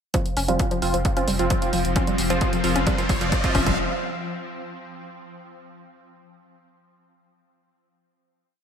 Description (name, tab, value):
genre	driving peak-time techno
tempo	132 BPM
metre	4/4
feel	straight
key	unclear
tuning	A4 = 441 Hz
part	woody wave-folded pluck	riff	0.1-3.7 s	F3 to Db4	-28 LUFS	left 2 dB	chorus, tube saturation, sidechain pumping, ping-pong delay
part	supersaw stab	stabs	0.1-3.8 s	F3 to F4	-25 LUFS	right 2 dB	sidechain pumping, low-pass filter, ping-pong delay
part	swarming drone	drone	1.0-3.8 s	F3 to C4	-31 LUFS	left 2 dB	built-in reverb, phaser, sidechain pumping
part	electronic hi-hat	drums	0.1-3.8 s	none	-32 LUFS	right 2 dB	sidechain pumping on hats
part	electronic kick drum	drums	0.1-3.8 s	none	-24 LUFS	equal	none
part	riser	sound effects	1.2-3.8 s	none	-31 LUFS	equal	none
part	saturated sub bass	bass	0.4-3.8 s	F1	-30 LUFS	equal	tube saturation, sidechain pumping, low-pass filter
room	moderate lush hall reverb, RT60 1.8 s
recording	bright 1980s-style digital production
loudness	-20 LUFS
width	side -8 dB against mid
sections	0.1-3.8 build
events	build-up 0.1-3.8; filter sweep on synth arpeggio sound 0.1-3.8; filter sweep on supersaw synth 0.1-3.8; riser 1.2-3.8; drum fill 2.0-3.8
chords	0.1 F5